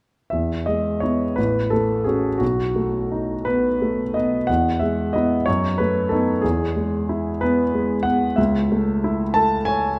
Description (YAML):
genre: classical, romantic character piece for solo piano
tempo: 55-63 BPM (dotted quarters)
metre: 6/8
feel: rubato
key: E major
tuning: A4 = 441 Hz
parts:
  - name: clear grand piano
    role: solo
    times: 0.3-10.0 s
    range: A1 to A5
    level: -21 LUFS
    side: equal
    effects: none
room: moderate recital hall reverb, RT60 1.6 s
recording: dark, warm production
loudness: -21 LUFS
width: mono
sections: 0.3-10.0 A section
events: none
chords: 0.3 E; 1.4 F#m/A; 2.4 B7; 4.5 E; 5.5 B7/F#; 6.4 E; 8.4 A/C#